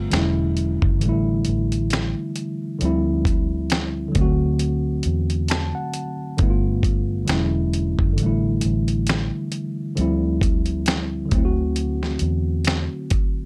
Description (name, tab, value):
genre	lo-fi hip hop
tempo	67 BPM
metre	4/4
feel	swing 56% on 16ths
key	unclear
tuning	A4 = 440 Hz
part	mellow tine electric piano	accompaniment	0.0-13.5 s	C3 to A5	-26 LUFS	equal	cassette tape, low-pass filter
part	vintage muted fingered electric bass	bass	0.0-12.9 s	E1 to E2	-26 LUFS	equal	none
part	dusty soul sampler-style drum kit	drums	0.1-13.3 s	finger snaps, hi-hat, kick drum, snare drum	-24 LUFS	equal	none
room	light reverb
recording	dry, gritty hardware recording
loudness	-22 LUFS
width	mono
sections	0.0-13.5 A section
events	none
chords	0.1 E13; 1.0 A7sus4; 2.8 Dm11; 4.2 D7; 6.4 G9; 7.3 E13; 8.2 A7sus4; 10.0 Dm11; 11.3 D7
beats	0.12 1.02 1.91 | 2.81 3.71 4.60 5.50 | 6.39 7.29 8.18 9.08 | 9.97 10.87 11.76 12.66